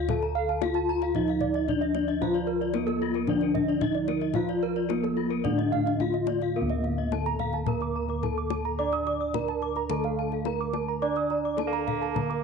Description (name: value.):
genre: Balinese gamelan.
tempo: 110 BPM.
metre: 4/4.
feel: uneven beats.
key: D pelog.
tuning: A4 = 439 Hz.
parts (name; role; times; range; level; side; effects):
gamelan-type bronze metallophone; melody; 0.0-12.4 s; Bb3 to D5; -28 LUFS; left 1 dB; none.
gamelan-type bronze metallophone; arpeggios; 0.0-12.3 s; F4 to Eb6+35c; -35 LUFS; left 11 dB; none.
gamelan-type bossed gongs; bass; 0.0-12.4 s; D2 to D5; -32 LUFS; left 1 dB; none.
kendang; percussion; 0.1-12.4 s; none; -34 LUFS; left 8 dB; none.
gamelan-type bronze metallophone; arpeggios; 0.4-12.4 s; A4 to Eb6+35c; -34 LUFS; right 10 dB; none.
gamelan-type bronze metallophone; accompaniment; 2.2-12.4 s; D3 to D4; -35 LUFS; right 13 dB; none.
clear bassoon; second line; 11.7-12.4 s; Bb3; -33 LUFS; right 14 dB; none.
room: moderate spring reverb, RT60 1.6 s, studio ambience.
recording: 1960s-style stereo with parts hard left and right, nothing above 10.6 kHz.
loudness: -25 LUFS.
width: side -5 dB against mid.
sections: 0.0-6.6 A section; 6.6-12.4 B section.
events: none.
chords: none.